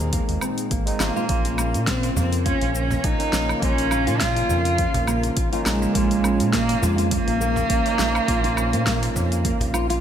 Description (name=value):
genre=organic downtempo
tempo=103 BPM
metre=4/4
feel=swing 55% on 16ths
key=Bb minor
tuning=A4 = 436 Hz
part: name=overdriven tine electric piano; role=accompaniment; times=0.0-10.0 s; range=Ab3 to F4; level=-30 LUFS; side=right 2 dB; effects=vintage 12-bit sampler grit, sidechain pumping, ping-pong delay
part: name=warm analog pad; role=sustained chords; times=0.0-10.0 s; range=Bb2 to C5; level=-33 LUFS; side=left 1 dB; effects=none
part: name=nylon-string guitar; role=arpeggios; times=0.0-10.0 s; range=Bb3 to F4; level=-29 LUFS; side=left 1 dB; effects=analog chorus, ping-pong delay
part: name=round analog bass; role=bass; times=0.0-10.0 s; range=Ab1 to Bb2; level=-25 LUFS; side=equal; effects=sidechain pumping
part: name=deep house drum kit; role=drums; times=0.0-10.0 s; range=hi-hat, shaker, snare drum, woodblock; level=-28 LUFS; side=equal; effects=none
part: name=electronic kick drum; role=drums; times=0.1-9.6 s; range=none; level=-27 LUFS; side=equal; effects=none
part: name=dark cello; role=melody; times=1.0-10.0 s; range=Ab3 to F4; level=-24 LUFS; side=right 2 dB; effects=vintage 12-bit sampler grit, ping-pong delay
part: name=cajon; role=percussion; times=2.0-10.0 s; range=none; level=-32 LUFS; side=right 2 dB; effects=none
room=moderate lush hall reverb, RT60 2.7 s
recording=bright 1980s-style digital production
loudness=-19 LUFS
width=side -9 dB against mid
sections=0.0-10.0 A section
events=none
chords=0.0 Ab; 1.3 Bbm